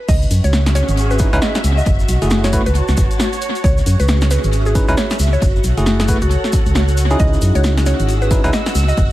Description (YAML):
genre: UK garage, two-step garage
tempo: 135 BPM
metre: 4/4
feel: swing 60% on 16ths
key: C# minor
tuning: A4 = 440 Hz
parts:
  - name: soft string machine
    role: sustained chords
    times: 0.0-9.1 s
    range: F#4 to F#5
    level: -28 LUFS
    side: equal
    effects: phaser, ensemble chorus, sidechain pumping
  - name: mallet-like synth pluck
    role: melody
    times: 0.1-9.1 s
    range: F#4 to D#5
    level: -25 LUFS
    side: equal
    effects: chorus, dub echo
  - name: organ-like FM bass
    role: bass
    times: 0.1-9.1 s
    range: F#1 to F#2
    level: -15 LUFS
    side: equal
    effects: sidechain pumping
  - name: electronic kick drum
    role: drums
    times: 0.1-9.1 s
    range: none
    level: -17 LUFS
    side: equal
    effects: small room ambience
  - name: house drum kit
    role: drums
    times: 0.1-9.1 s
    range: crash cymbal, hi-hat, snare drum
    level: -22 LUFS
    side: equal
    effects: small room ambience, tape echo
  - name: tube shaker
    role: percussion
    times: 0.1-9.1 s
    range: none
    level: -31 LUFS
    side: left 2 dB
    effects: tape echo
  - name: muted studio string section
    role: texture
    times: 0.1-9.1 s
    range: C#4 to E6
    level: -26 LUFS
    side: right 1 dB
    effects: sidechain pumping
  - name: bell-like tine electric piano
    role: stabs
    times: 1.2-8.5 s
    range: A3 to B4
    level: -22 LUFS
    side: equal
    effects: analog delay
room: digital ambience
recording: echo-heavy mix, vinyl crackle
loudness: -13 LUFS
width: side -15 dB against mid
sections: 0.1-9.1 A section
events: drop 0.1-9.1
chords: 0.1 C#madd9; 1.9 F#m9; 3.6 C#m7; 5.4 F#m9; 7.2 C#madd9